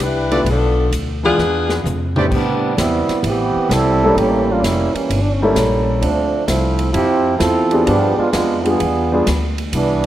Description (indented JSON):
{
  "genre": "jazz, big band swing",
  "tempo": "129 BPM",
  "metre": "4/4",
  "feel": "swing 67% on 8ths",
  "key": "A minor",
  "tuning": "A4 = 440 Hz",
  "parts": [
    { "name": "warm saxophone section", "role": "melody", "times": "0.0-1.8 s", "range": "F3 to B4", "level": "-18 LUFS", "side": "left 3 dB", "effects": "none" },
    { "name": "upright bass", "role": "bass", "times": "0.0-10.1 s", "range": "F1 to A2", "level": "-20 LUFS", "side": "equal", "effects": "none" },
    { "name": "swinging big-band drum kit", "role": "drums", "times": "0.0-10.1 s", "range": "crash cymbal, hi-hat, kick drum, ride cymbal, snare drum, toms", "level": "-26 LUFS", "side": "equal", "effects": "none" },
    { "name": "warm upright piano", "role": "accompaniment", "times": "0.3-9.3 s", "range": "A2 to A4", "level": "-19 LUFS", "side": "left 1 dB", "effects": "none" },
    { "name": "bright trumpet section", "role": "stabs", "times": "0.3-2.3 s", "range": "A3 to D5", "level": "-25 LUFS", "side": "right 1 dB", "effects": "none" },
    { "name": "clear trombone section", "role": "second line", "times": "2.3-10.1 s", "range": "E3 to A4", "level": "-17 LUFS", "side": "right 2 dB", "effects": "none" }
  ],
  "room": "moderate concert hall reverb, RT60 1.8 s",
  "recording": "none",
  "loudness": "-14 LUFS",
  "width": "side -12 dB against mid",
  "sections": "0.0-2.3 A section; 2.3-10.1 B section",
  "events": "drum fill 1.4-2.3; trombone section solo 2.3-10.1",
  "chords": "0.5 Bm7b5; 1.4 E7b9; 2.3 Am11; 4.2 A7b9; 6.0 Dm9; 7.9 G7b9"
}